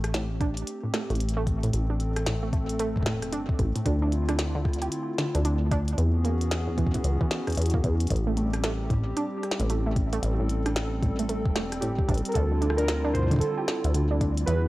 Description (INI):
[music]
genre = IDM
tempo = 113 BPM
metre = 4/4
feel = swing 62% on 16ths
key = unclear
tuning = A4 = 440 Hz
[part]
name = hollow soft pad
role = sustained chords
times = 0.0-14.7 s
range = D3 to A4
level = -33 LUFS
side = equal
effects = chorus
[part]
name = deep acid bass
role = bass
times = 0.0-14.7 s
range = E1 to E2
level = -26 LUFS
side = equal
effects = tube saturation
[part]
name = glitchy drum kit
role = drums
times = 0.0-14.6 s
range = hi-hat, rim click, snare drum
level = -33 LUFS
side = equal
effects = none
[part]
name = warbly dusty pluck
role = arpeggios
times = 0.1-14.6 s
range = E2 to G4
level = -31 LUFS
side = right 2 dB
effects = chorus, analog delay
[part]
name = electronic kick drum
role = drums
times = 0.4-14.3 s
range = none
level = -26 LUFS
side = equal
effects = none
[part]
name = warbly lo-fi synth keys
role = melody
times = 11.8-14.7 s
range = G4 to C5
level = -30 LUFS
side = right 2 dB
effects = chorus
[sound]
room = little or no reverb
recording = dry, gritty hardware recording, transformer saturation, cassette tape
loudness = -24 LUFS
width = side -18 dB against mid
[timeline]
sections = 0.0-14.7 A section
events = none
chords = 0.0 Am7; 3.9 Dm7; 6.0 E6; 8.1 Am7; 12.4 Dm7